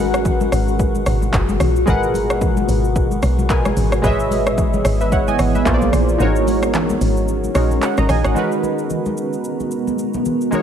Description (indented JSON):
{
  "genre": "amapiano",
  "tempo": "111 BPM",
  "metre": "4/4",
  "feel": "swing 58% on 16ths",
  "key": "G# minor",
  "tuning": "A4 = 438 Hz",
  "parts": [
    { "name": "warm analog keys", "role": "accompaniment", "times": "0.0-10.6 s", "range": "G#3 to A#5", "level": "-20 LUFS", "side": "equal", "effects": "chorus" },
    { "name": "granular cloud pad", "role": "sustained chords", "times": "0.0-10.6 s", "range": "A#2 to A#5", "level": "-22 LUFS", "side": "equal", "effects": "built-in reverb" },
    { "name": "deep log drum bass", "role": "bass", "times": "0.0-8.3 s", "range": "F#1 to B1", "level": "-20 LUFS", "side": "equal", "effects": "none" },
    { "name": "deep house drum kit", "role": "drums", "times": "0.1-10.6 s", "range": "handclaps, hi-hat, kick drum, rim click, shaker", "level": "-22 LUFS", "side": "equal", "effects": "overdrive" },
    { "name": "congas", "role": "percussion", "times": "0.3-10.6 s", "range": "none", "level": "-27 LUFS", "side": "left 2 dB", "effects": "none" }
  ],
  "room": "digital ambience",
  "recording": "none",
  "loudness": "-15 LUFS",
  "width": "side -8 dB against mid",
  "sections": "0.0-8.4 A section; 8.4-10.6 B section",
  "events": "drop 0.0-8.4; kick muted 6.2-8.4",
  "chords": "0.0 G#m9; 4.0 C#m9/G#; 5.7 A#7; 6.2 D#m7/G#; 8.4 G#m9"
}